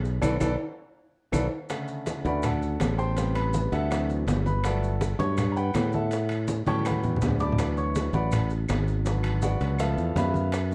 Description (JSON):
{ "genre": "Afro-Cuban jazz", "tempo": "163 BPM", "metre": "4/4", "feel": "straight", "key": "B minor", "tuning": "A4 = 439 Hz", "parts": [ { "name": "modern bright fingered electric bass", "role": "bass", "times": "0.0-10.7 s", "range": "G1 to A2", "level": "-29 LUFS", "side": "equal", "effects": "none" }, { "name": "bongos", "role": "percussion", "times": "0.0-10.7 s", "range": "none", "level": "-40 LUFS", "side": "equal", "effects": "none" }, { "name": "maracas", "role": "percussion", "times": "0.0-10.7 s", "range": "none", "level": "-49 LUFS", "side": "equal", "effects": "none" }, { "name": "congas", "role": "percussion", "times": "0.1-10.7 s", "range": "none", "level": "-34 LUFS", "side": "equal", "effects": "none" }, { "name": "clear grand piano", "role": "accompaniment", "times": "0.2-10.7 s", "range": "C3 to D6", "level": "-33 LUFS", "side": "equal", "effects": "none" }, { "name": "claves", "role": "percussion", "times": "0.2-10.7 s", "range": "none", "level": "-45 LUFS", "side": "equal", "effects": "none" }, { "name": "timbales", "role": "percussion", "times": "0.2-10.7 s", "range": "none", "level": "-37 LUFS", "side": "equal", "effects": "none" } ], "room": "light reverb", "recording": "dark, warm production", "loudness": "-27 LUFS", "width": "mono", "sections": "0.0-1.7 A section; 1.7-10.7 A section", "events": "grand piano solo 0.0-10.7; band accent 0.2-1.7; drum fill 0.8-1.7, 6.7-7.6", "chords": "0.0 Bm7; 1.7 Bm9; 3.2 Am7; 3.9 D9; 4.6 Gmaj9; 6.1 A13; 7.6 D6; 9.1 G#m7b5; 9.8 C#7alt" }